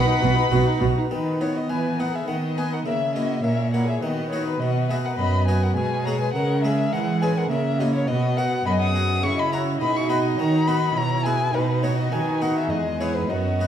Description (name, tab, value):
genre	classical, baroque-style concerto movement with solo episodes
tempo	104 BPM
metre	3/4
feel	straight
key	B major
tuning	A4 = 444 Hz
part	dark violin	melody	0.0-13.7 s	B4 to D#6	-27 LUFS	left 3 dB	none
part	rich symphonic violin section	melody	0.0-13.7 s	E4 to B5	-33 LUFS	left 5 dB	none
part	warm chamber violin section	second line	0.0-13.7 s	D#4 to F#5	-31 LUFS	left 5 dB	none
part	harpsichord	accompaniment	0.0-13.7 s	E2 to G#4	-29 LUFS	left 1 dB	none
part	rich chamber viola section	accompaniment	0.0-13.7 s	G#3 to F#4	-29 LUFS	right 3 dB	none
part	rich chamber double bass section	bass	0.2-0.9 s	B1	-24 LUFS	right 3 dB	none
part	warm studio cello section	bass	0.2-13.7 s	E2 to E3	-24 LUFS	right 2 dB	none
room	wet recital hall reverb, RT60 1.3 s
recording	dark, warm production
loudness	-20 LUFS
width	side -9 dB against mid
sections	0.0-1.1 A section; 1.1-13.7 B section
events	none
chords	0.0 B; 1.1 B/D#; 2.9 A#dim/C#; 4.0 B/D#; 4.6 B; 5.8 G#m/B; 6.4 C#m; 7.5 A#dim/C#; 8.1 B; 9.2 F#7(no3)/C#; 9.8 B; 11.0 E/B; 11.5 B; 12.7 E